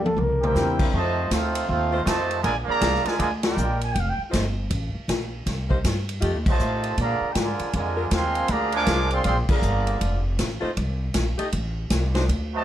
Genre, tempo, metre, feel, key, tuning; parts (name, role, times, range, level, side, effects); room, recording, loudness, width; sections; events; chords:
jazz, big band swing; 158 BPM; 4/4; swing 63% on 8ths; A4 = 441 Hz
trombone with cup mute; melody; 0.0-0.8 s; A4 to Bb4; -25 LUFS; left 1 dB
clear upright piano; accompaniment; 0.0-0.9 s; G3 to Bb4; -30 LUFS; left 4 dB
upright bass; bass; 0.0-12.6 s; F1 to Bb2; -26 LUFS; equal
swinging big-band drum kit; drums; 0.1-12.4 s; crash cymbal, hi-hat, kick drum, ride cymbal, snare drum, toms; -27 LUFS; equal
warm trumpet section; melody; 0.4-4.2, 6.5-10.2, 12.5-12.6 s; Eb4 to D6; -26 LUFS; right 2 dB
muted trombone section; second line; 0.4-3.8, 6.5-10.2, 12.5-12.6 s; C3 to G4; -28 LUFS; right 4 dB
warm saxophone section; sustained chords; 1.9-12.2 s; Gb3 to Eb5; -30 LUFS; left 1 dB
light reverb; dark, warm production; -21 LUFS; side -11 dB against mid
0.9-12.6 A section
drum fill 0.0-0.6; band accent 3.4, 6.4, 9.4
0.2 C7; 0.9 F7; 2.4 Bb7; 4.0 F7; 5.5 Cm7; 6.2 F7; 7.0 Bb7; 10.0 F7; 11.5 Adim